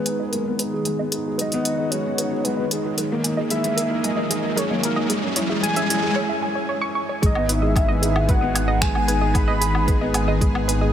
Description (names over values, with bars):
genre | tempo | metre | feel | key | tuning
piano and strings electronica | 113 BPM | 4/4 | straight | G# minor | A4 = 441 Hz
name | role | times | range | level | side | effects
warm velvety synth lead | melody | 0.0-10.1 s | G#4 to B5 | -26 LUFS | equal | chorus, tremolo
lush unison pad | sustained chords | 0.0-10.9 s | D#3 to G#4 | -30 LUFS | equal | chorus, phaser, sidechain pumping
dark upright piano | riff | 0.0-10.9 s | G#3 to G#4 | -25 LUFS | left 1 dB | digital delay
riser | sound effects | 2.1-6.2 s | none | -29 LUFS | left 1 dB | none
warbly dusty pluck | arpeggios | 0.1-10.9 s | G#4 to C#6 | -30 LUFS | right 3 dB | chorus, sidechain pumping, digital delay
deep house drum kit | drums | 0.1-10.8 s | finger snaps, hi-hat, woodblock | -26 LUFS | equal | studio reverb
dark detuned saw bass | bass | 7.2-10.9 s | G#1 | -23 LUFS | equal | sidechain pumping
electronic kick drum | drums | 7.2-10.5 s | none | -21 LUFS | equal | studio reverb
room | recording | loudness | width
light reverb, digital ambience | none | -19 LUFS | side -10 dB against mid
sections
0.0-7.2 A section; 7.2-10.9 B section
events
build-up 0.0-7.2; filter sweep on analog synth pad 0.0-7.2; filter sweep on synth arpeggio sound 0.0-7.2; riser 2.1-6.2; break 6.2-7.2; drop 7.2-10.9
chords
0.0 G#m; 3.0 D#sus4; 5.1 C#m; 7.2 G#m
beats
0.33 | 0.86 1.39 1.92 2.45 | 2.98 3.52 4.05 4.58 | 5.11 5.64 6.17 6.70 | 7.23 7.76 8.29 8.82 | 9.36 9.89 10.42